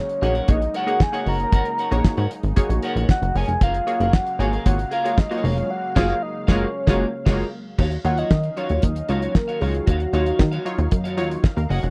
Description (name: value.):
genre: early-eighties boogie funk.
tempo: 115 BPM.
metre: 4/4.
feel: straight.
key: unclear.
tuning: A4 = 440 Hz.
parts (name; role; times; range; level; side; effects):
soft octave-layered synth lead; melody; 0.0-10.6 s; F#4 to A#5; -27 LUFS; equal; chorus, phaser.
lush unison pad; sustained chords; 0.0-11.9 s; C#3 to E#5; -37 LUFS; equal; none.
plucky analog bass; bass; 0.0-11.9 s; E#1 to D#3; -25 LUFS; equal; none.
clean electric guitar; riff; 0.1-11.9 s; F#4 to G#5; -34 LUFS; equal; lush chorus.
damped 70s drum kit; drums; 0.1-11.9 s; crash cymbal, hi-hat, kick drum, snare drum; -20 LUFS; equal; none.
funky polysynth comp; accompaniment; 0.2-11.9 s; F#3 to G#5; -29 LUFS; equal; chorus.
room: little or no reverb.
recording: dry, close 1970s-style studio recording.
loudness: -21 LUFS.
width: mono.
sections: 0.0-7.8 A section; 7.8-11.9 B section.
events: band accent 5.7-7.8; soft synth lead solo 7.8-11.9.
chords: 0.0 G#9sus4; 3.6 F#maj9; 7.8 D#m9.